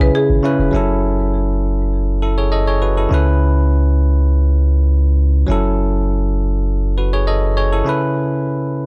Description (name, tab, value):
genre	afrobeats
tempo	101 BPM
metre	4/4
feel	straight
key	F# minor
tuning	A4 = 440 Hz
part	marimba with hard mallets	melody	0.0-0.6 s	G#4 to B4	-24 LUFS	equal	tape echo
part	bell-like tine electric piano	accompaniment	0.0-8.9 s	C#3 to D#5	-21 LUFS	equal	none
part	punchy sub bass	bass	0.0-7.8 s	E1 to C#2	-17 LUFS	equal	none
room	small room ambience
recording	dry, gritty hardware recording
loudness	-16 LUFS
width	mono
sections	0.7-8.9 A section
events	break 7.9-8.9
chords	0.0 C#m7; 0.7 F#m7; 3.1 C#m7; 5.5 F#m7; 7.9 C#m7